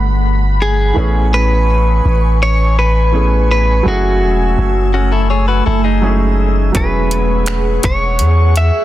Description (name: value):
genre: contemporary R&B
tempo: 83 BPM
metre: 4/4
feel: straight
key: unclear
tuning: A4 = 441 Hz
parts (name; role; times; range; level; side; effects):
- clear concert grand piano; accompaniment; 0.0-8.8 s; E3 to G#4; -21 LUFS; right 5 dB; none
- glassy FM pad; sustained chords; 0.0-8.8 s; A3 to E6; -21 LUFS; equal; ensemble chorus, built-in reverb
- long sustained 808-style bass; bass; 0.0-8.7 s; E1 to E2; -13 LUFS; equal; none
- clean electric guitar; melody; 0.6-8.8 s; F#4 to E5; -17 LUFS; equal; digital delay
- direct-recorded clean electric guitar; arpeggios; 4.9-6.7 s; C#4 to C#5; -18 LUFS; left 7 dB; digital delay
- trap drum kit; drums; 6.7-8.7 s; finger snaps, hi-hat, kick drum; -18 LUFS; equal; soft clipping on snare
room: digital ambience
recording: dense, heavily limited modern master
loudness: -11 LUFS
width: side -14 dB against mid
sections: 0.0-8.8 A section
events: none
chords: 0.0 Gmaj9; 1.0 Amaj9; 3.9 F#m9; 6.7 E69